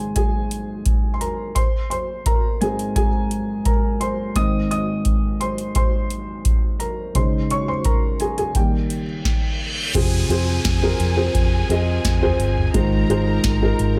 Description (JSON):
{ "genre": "piano-driven pop", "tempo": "86 BPM", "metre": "4/4", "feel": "straight", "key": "Ab major", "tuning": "A4 = 439 Hz", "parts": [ { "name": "dark upright piano", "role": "accompaniment", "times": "0.0-14.0 s", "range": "Ab2 to Eb6", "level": "-25 LUFS", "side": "equal", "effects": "plate reverb" }, { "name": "booming analog drum machine", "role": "drums", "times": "0.2-14.0 s", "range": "crash cymbal, hi-hat, kick drum, snare drum, toms", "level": "-24 LUFS", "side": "equal", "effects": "none" }, { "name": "reverse cymbal and downlifter", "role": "sound effects", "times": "8.9-14.0 s", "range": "none", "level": "-32 LUFS", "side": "equal", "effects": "none" }, { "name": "warm symphonic violin section", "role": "second line", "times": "9.9-14.0 s", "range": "Ab4 to Bb5", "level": "-32 LUFS", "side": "equal", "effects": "plate reverb" }, { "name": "vintage muted fingered electric bass", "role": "bass", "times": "9.9-14.0 s", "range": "G1 to F2", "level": "-24 LUFS", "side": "equal", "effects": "none" } ], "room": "light reverb", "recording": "none", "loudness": "-21 LUFS", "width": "mono", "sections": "0.0-10.0 A section; 10.0-14.0 B section", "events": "upright piano solo 0.0-10.0; reverse cymbal 9.0-10.0", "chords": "0.0 Ab; 1.6 Abadd9; 4.4 Ab; 7.2 Dbsus2; 8.6 Eb; 10.0 Fm; 12.7 Ab6", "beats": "0.16 0.86 | 1.56 2.26 2.96 3.66 | 4.36 5.06 5.76 6.46 | 7.15 7.85 8.55 9.25 | 9.95 10.65 11.35 12.05 | 12.74 13.44" }